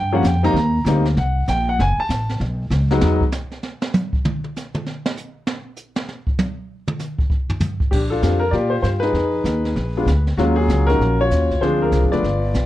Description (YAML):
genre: jazz piano trio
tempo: 195 BPM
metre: 4/4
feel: swing 62% on 8ths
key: unclear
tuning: A4 = 440 Hz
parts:
  - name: warm concert grand piano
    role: melody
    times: 0.0-3.2, 7.9-12.7 s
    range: F3 to Bb5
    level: -19 LUFS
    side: left 2 dB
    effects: none
  - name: upright bass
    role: bass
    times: 0.0-3.2, 7.9-12.7 s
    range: F1 to Bb2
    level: -19 LUFS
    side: equal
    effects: none
  - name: jazz brush drum kit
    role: drums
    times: 0.2-12.7 s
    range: brushed snare drum, crash cymbal, hi-hat, kick drum, snare drum, toms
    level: -23 LUFS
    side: right 1 dB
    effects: none
room: light reverb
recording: worn, warbling old tape, cassette tape, warbly pitch drift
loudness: -17 LUFS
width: side -14 dB against mid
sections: 0.0-7.9 A section; 7.9-12.7 B section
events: grand piano solo 0.0-7.9; drum solo 3.0-7.9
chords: 0.0 Ebadd9 (rootless); 0.6 Bb69; 1.8 Gbm; 2.4 Bsus2; 3.0 N.C.; 7.9 Bb6; 9.2 Fm7b5; 9.8 Bb7b9; 10.4 Ebm11; 11.6 Dm7b5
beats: 0.24 | 0.55 0.86 1.17 1.48 | 1.78 2.09 2.40 2.70 | 3.01 3.32 3.62 3.93 | 4.24 4.55 4.85 5.16 | 5.47 5.77 6.08 6.39 | 6.69 7.00 7.31 7.62 | 7.92 8.23 8.54 8.85 | 9.15 9.46 9.77 10.08 | 10.39 10.70 11.00 11.31 | 11.62 11.93 12.24 12.54